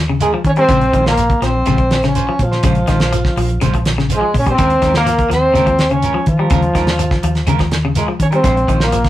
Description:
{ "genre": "afrobeat", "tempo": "124 BPM", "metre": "4/4", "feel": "straight", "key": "unclear", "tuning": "A4 = 441 Hz", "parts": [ { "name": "vintage muted fingered electric bass", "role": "bass", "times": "0.0-9.1 s", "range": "Bb1 to Eb3", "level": "-18 LUFS", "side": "equal", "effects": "none" }, { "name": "electric guitar at the edge of break-up", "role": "arpeggios", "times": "0.1-9.1 s", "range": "Db3 to G3", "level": "-21 LUFS", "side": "left 4 dB", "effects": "none" }, { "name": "warm trombone", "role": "melody", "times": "0.2-9.1 s", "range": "F3 to Db4", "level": "-17 LUFS", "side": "equal", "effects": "none" }, { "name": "clear alto saxophone", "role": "second line", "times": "0.2-9.1 s", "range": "F4 to Db5", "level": "-22 LUFS", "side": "right 2 dB", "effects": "none" }, { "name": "clean electric guitar", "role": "stabs", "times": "0.2-9.0 s", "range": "Ab3 to C5", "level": "-25 LUFS", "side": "right 4 dB", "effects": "none" }, { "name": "damped 70s drum kit", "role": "drums", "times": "0.2-9.1 s", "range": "hi-hat, kick drum, snare drum", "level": "-18 LUFS", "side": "equal", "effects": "none" }, { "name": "shekere", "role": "percussion", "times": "0.2-9.1 s", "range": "none", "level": "-24 LUFS", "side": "right 4 dB", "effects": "none" } ], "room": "light reverb", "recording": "rough rehearsal-room recording", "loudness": "-12 LUFS", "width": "side -14 dB against mid", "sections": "0.0-9.1 A section", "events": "none", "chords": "0.0 Eb9sus4; 0.7 Bbm9; 4.6 Eb9sus4; 8.4 Bbm9", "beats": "0.20 | 0.69 1.18 1.66 2.15 | 2.63 3.12 3.60 4.09 | 4.57 5.06 5.54 6.02 | 6.51 6.99 7.48 7.96 | 8.44 8.93" }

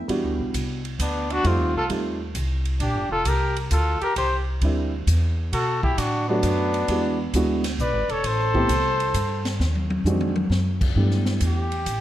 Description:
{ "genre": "jazz, small-group swing and bop", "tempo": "132 BPM", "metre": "3/4", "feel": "swing 68% on 8ths", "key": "unclear", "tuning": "A4 = 441 Hz", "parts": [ { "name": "dark upright piano", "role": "accompaniment", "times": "0.0-2.2, 4.6-11.7 s", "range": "Eb3 to G4", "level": "-26 LUFS", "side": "right 2 dB", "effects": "none" }, { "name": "upright bass", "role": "bass", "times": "0.0-12.0 s", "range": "E1 to B2", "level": "-24 LUFS", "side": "equal", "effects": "none" }, { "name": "swinging big-band drum kit", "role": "drums", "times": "0.1-12.0 s", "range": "crash cymbal, hi-hat, kick drum, ride cymbal, snare drum, toms", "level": "-30 LUFS", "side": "equal", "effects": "none" }, { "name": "trumpet with bucket mute", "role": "melody", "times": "1.0-12.0 s", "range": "D4 to D5", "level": "-26 LUFS", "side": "left 3 dB", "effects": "none" }, { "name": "clear trumpet", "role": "second line", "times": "1.0-9.6 s", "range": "B3 to B4", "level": "-28 LUFS", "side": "right 3 dB", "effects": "none" } ], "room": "light reverb", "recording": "none", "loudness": "-20 LUFS", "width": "side -13 dB against mid", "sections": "0.1-11.0 A section; 11.0-12.0 B section", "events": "drum fill 9.6-10.5; muted trumpet solo 11.0-12.0", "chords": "0.1 Em7; 1.4 F9; 2.8 Bb6; 4.2 C9; 5.5 Bm7; 6.9 E7; 8.2 Am7; 9.6 Ab7#11; 11.0 G69", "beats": "| 0.09 0.54 0.99 | 1.45 1.90 2.35 | 2.81 3.26 3.71 | 4.17 4.62 5.07 | 5.52 5.98 6.43 | 6.88 7.34 7.79 | 8.24 8.70 9.15 | 9.60 10.05 10.51 | 10.96 11.41 11.87" }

